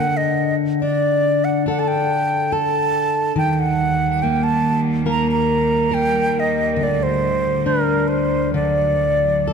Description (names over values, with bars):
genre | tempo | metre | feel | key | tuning
celtic folk, Celtic slow air | 70 BPM | 4/4 | rubato | unclear | A4 = 439 Hz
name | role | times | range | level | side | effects
wooden flute | melody | 0.0-9.5 s | Bb4 to Bb5 | -20 LUFS | right 2 dB | none
fingerpicked plugged-in steel-string acoustic guitar | accompaniment | 0.0-9.5 s | D3 to Bb4 | -20 LUFS | left 2 dB | none
bright chamber string section | sustained chords | 3.4-9.5 s | D2 to G3 | -26 LUFS | right 3 dB | none
room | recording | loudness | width
wet church reverb, RT60 3.0 s | none | -16 LUFS | side -6 dB against mid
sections
0.0-9.5 A section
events
none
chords
0.0 D5; 3.4 Eb; 6.8 Dsus4; 8.5 D